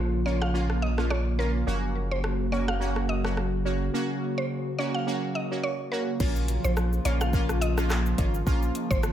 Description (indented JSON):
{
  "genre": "dancehall",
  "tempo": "106 BPM",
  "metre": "4/4",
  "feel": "swing 56% on 16ths",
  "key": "Bb minor",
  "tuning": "A4 = 443 Hz",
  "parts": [
    { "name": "synth brass stab", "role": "accompaniment", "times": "0.0-9.1 s", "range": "Bb3 to Gb4", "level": "-32 LUFS", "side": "right 1 dB", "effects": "chorus, phaser" },
    { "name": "hollow soft pad", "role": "sustained chords", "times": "0.0-9.1 s", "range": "Db3 to Gb4", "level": "-32 LUFS", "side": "equal", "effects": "chorus, sidechain pumping" },
    { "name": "punchy sub bass", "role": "bass", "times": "0.0-9.1 s", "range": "Gb1 to Bb1", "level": "-27 LUFS", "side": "equal", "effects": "none" },
    { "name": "mallet-like synth pluck", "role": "melody", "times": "0.3-9.0 s", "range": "Bb4 to F5", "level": "-33 LUFS", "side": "right 1 dB", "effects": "chorus, tape echo" },
    { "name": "afro-pop drum kit", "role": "drums", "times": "0.4-9.1 s", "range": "crash cymbal, handclaps, hi-hat, kick drum, rim click, shaker", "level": "-30 LUFS", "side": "equal", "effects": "none" }
  ],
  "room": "light reverb",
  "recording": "none",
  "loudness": "-24 LUFS",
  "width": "side -11 dB against mid",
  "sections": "0.0-6.2 A section; 6.2-9.1 B section",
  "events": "none",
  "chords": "0.0 Bbm; 1.7 Gb; 6.2 Bbm",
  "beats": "0.54 1.11 | 1.67 2.24 2.81 3.37 | 3.94 4.50 5.07 5.63 | 6.20 6.77 7.33 7.90 | 8.46 9.03"
}